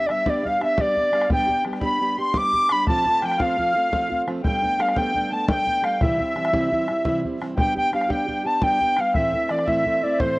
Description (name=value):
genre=celtic folk, Celtic slip jig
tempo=115 BPM (dotted quarters)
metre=9/8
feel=straight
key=unclear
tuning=A4 = 442 Hz
part: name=bright reedy wooden flute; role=melody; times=0.0-10.4 s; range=C5 to D6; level=-21 LUFS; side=equal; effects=none
part: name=fingerpicked plugged-in steel-string acoustic guitar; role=accompaniment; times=0.0-10.4 s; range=A2 to G4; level=-27 LUFS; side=right 1 dB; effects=none
part: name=musette accordion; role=second line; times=0.1-10.4 s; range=C5 to D6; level=-30 LUFS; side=left 1 dB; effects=none
part: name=bodhran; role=percussion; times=0.1-10.3 s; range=none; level=-26 LUFS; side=equal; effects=none
room=light reverb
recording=home recording on cassette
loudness=-19 LUFS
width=side -22 dB against mid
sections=0.0-7.6 A section; 7.6-10.4 A section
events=none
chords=0.0 G; 2.9 F; 4.4 Gadd9; 6.0 C; 7.6 G; 9.2 Am